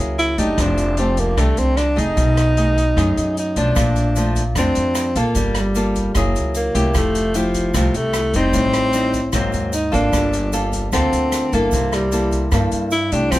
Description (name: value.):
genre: bossa nova.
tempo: 151 BPM.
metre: 4/4.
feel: straight.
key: F major.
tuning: A4 = 441 Hz.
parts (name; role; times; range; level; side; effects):
nylon-string guitar; accompaniment; 0.0-13.4 s; F2 to A4; -21 LUFS; left 1 dB; none.
upright bass; bass; 0.0-13.4 s; F1 to G2; -21 LUFS; equal; none.
mellow tenor saxophone; melody; 0.2-13.4 s; F3 to Fb4; -20 LUFS; equal; none.
open jazz drum kit; drums; 0.2-13.4 s; hi-hat, kick drum, rim click; -25 LUFS; equal; none.
egg shaker; percussion; 3.8-13.4 s; none; -36 LUFS; right 5 dB; none.
room: little or no reverb.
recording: none.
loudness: -16 LUFS.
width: side -16 dB against mid.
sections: 0.0-13.4 A section.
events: none.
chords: 0.0 Gb9; 0.6 F69; 2.2 B6; 3.8 Bbmaj7; 5.4 Gm9; 6.1 Gb9; 6.9 Fmaj9; 8.5 Am7b5; 9.3 Ab9; 10.1 Gm9; 11.7 C6.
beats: 0.19 | 0.58 0.98 1.38 1.77 | 2.17 2.57 2.97 3.37 | 3.76 4.16 4.56 4.96 | 5.35 5.75 6.15 6.55 | 6.95 7.34 7.74 8.14 | 8.54 8.94 9.33 9.73 | 10.13 10.53 10.93 11.32 | 11.72 12.12 12.52 12.91 | 13.31.